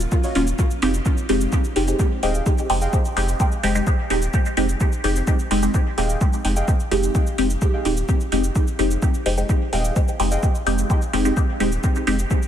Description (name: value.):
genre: dub techno.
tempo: 128 BPM.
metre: 4/4.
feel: straight.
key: unclear.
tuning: A4 = 438 Hz.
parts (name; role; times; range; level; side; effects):
soft dub sub bass; bass; 0.0-12.2 s; Eb1 to F1; -23 LUFS; equal; sidechain pumping.
electronic shaker and hi-hat; drums; 0.0-12.5 s; none; -32 LUFS; right 2 dB; none.
electronic kick drum; drums; 0.1-12.4 s; none; -19 LUFS; equal; none.
warbly lo-fi synth keys; riff; 0.2-2.9, 6.0-10.4 s; Gb4 to G5; -33 LUFS; equal; chorus, sidechain pumping, dub echo.
filtered dub chord stab; stabs; 0.4-12.2 s; Gb3 to G4; -22 LUFS; equal; phaser, sidechain pumping, dub echo.
room: light reverb.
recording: none.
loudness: -18 LUFS.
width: side -10 dB against mid.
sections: 0.0-12.5 A section.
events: none.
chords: 0.0 Ebm9; 0.6 Fm9.